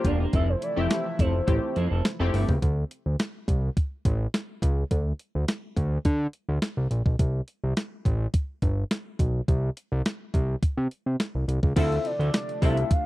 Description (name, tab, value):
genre	early-eighties boogie funk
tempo	105 BPM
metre	4/4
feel	straight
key	D minor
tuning	A4 = 441 Hz
part	gliding portamento lead	melody	0.0-2.1, 11.8-13.1 s	C5 to F5	-30 LUFS	left 1 dB	chorus
part	funky polysynth comp	accompaniment	0.0-2.5, 11.8-12.9 s	A3 to A4	-30 LUFS	left 3 dB	chorus
part	chorused pulse-width pad	sustained chords	0.0-2.6, 11.8-13.1 s	C3 to E4	-37 LUFS	left 1 dB	none
part	clean electric guitar	riff	0.0-2.5, 11.8-12.9 s	F3 to C5	-35 LUFS	right 5 dB	analog chorus
part	fat analog bass	bass	0.0-12.8 s	E1 to D3	-25 LUFS	equal	none
part	crisp 8-bit digital drum machine	drums	0.0-13.0 s	crash cymbal, hi-hat, kick drum, snare drum	-25 LUFS	equal	none
room	digital ambience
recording	dry, close 1970s-style studio recording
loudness	-24 LUFS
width	side -18 dB against mid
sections	0.0-2.6 A section; 2.6-11.8 B section; 11.8-13.1 C section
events	soft synth lead solo 0.0-2.6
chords	0.3 Fmaj7; 2.6 D5; 7.2 N.C.; 11.8 Dm9